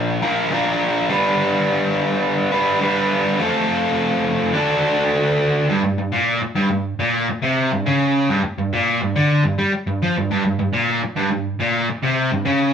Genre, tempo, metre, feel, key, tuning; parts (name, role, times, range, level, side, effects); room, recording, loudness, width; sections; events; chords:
rock; 104 BPM; 4/4; straight; G mixolydian; A4 = 440 Hz
overdriven electric guitar; solo; 0.0-12.7 s; G2 to B4; -17 LUFS; equal
wet studio reverb, RT60 0.6 s; band playing live in one room; -17 LUFS; side -8 dB against mid
0.0-5.7 A section; 5.7-12.7 B section
0.0 Bb; 1.1 G; 3.4 F; 4.5 D; 5.7 G5